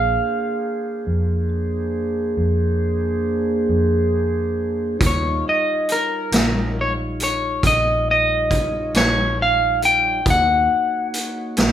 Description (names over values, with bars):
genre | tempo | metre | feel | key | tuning
slow blues | 46 BPM (dotted quarters) | 12/8 | straight | unclear | A4 = 438 Hz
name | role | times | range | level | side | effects
electric guitar at the edge of break-up | melody | 0.0-11.7 s | Bb4 to G5 | -18 LUFS | left 1 dB | none
mellow tonewheel organ | sustained chords | 0.0-11.7 s | G3 to Db5 | -24 LUFS | right 1 dB | slow rotary speaker
vintage muted fingered electric bass | bass | 0.0-11.7 s | Bb1 to F2 | -24 LUFS | equal | none
vintage drum kit | drums | 5.0-11.7 s | hi-hat, kick drum, snare drum | -20 LUFS | equal | none
room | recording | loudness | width
moderate large studio reverb, RT60 0.8 s | band playing live in one room | -17 LUFS | side -10 dB against mid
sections
0.0-11.7 A section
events
none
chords
0.0 Bb9; 5.0 Eb9; 10.3 Ebm7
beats
1.07 2.39 3.70 | 5.01 6.32 7.64 8.95 | 10.26 11.57